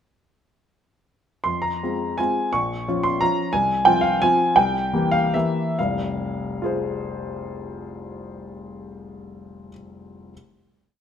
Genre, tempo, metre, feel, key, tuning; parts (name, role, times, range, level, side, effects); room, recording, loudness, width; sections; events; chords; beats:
classical, piano waltz; 127-188 BPM; 3/4; rubato; F minor; A4 = 440 Hz
warm upright piano; solo; 1.4-10.3 s; F1 to Db6; -20 LUFS; equal
moderate recital hall reverb, RT60 1.5 s; close, detailed microphones; -20 LUFS; side -8 dB against mid
1.5-5.8 A section; 5.8-8.2 final chord
slowing down 3.0-5.8
1.5 Fm; 2.5 Bbm; 3.5 Fm/C; 4.6 C7; 5.8 Fm
| 1.47 1.83 2.18 | 2.53 2.87 3.21 | 3.54 3.86 4.21 | 4.56 4.93 5.34 | 5.78 6.19 6.60 | 7.01 7.41 7.82